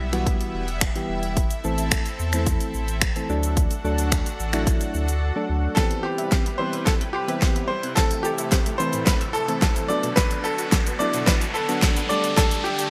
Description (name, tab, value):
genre	dance-pop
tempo	109 BPM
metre	4/4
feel	straight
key	A dorian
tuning	A4 = 440 Hz
part	supersaw pad	sustained chords	0.0-12.9 s	C3 to F#5	-35 LUFS	equal	lush chorus, sidechain pumping
part	warm sub bass	bass	0.0-5.7 s	E1 to E2	-28 LUFS	equal	sidechain pumping
part	soft electric-piano-like synth keys	accompaniment	0.1-12.9 s	E3 to B4	-31 LUFS	equal	chorus, sidechain pumping
part	pop drum kit	drums	0.1-12.9 s	finger snaps, hi-hat, kick drum, shaker, snare drum	-25 LUFS	equal	gated reverb
part	bright grand piano	melody	5.7-12.9 s	G4 to D5	-28 LUFS	equal	none
part	unison pluck	arpeggios	5.8-12.9 s	A2 to B5	-37 LUFS	equal	ensemble chorus, sidechain pumping, digital delay
part	riser	sound effects	8.1-12.9 s	none	-35 LUFS	equal	none
room	light reverb, digital ambience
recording	bright 1980s-style digital production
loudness	-23 LUFS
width	mono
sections	0.0-5.8 A section; 5.8-12.9 B section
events	drums muted 5.2-5.8; build-up 5.8-12.9; drum fill 5.8-12.9; riser 8.1-12.9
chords	0.0 Em; 1.4 Am; 3.3 D; 5.8 Cmaj7; 8.0 Am; 9.9 Bm7; 12.1 Dsus4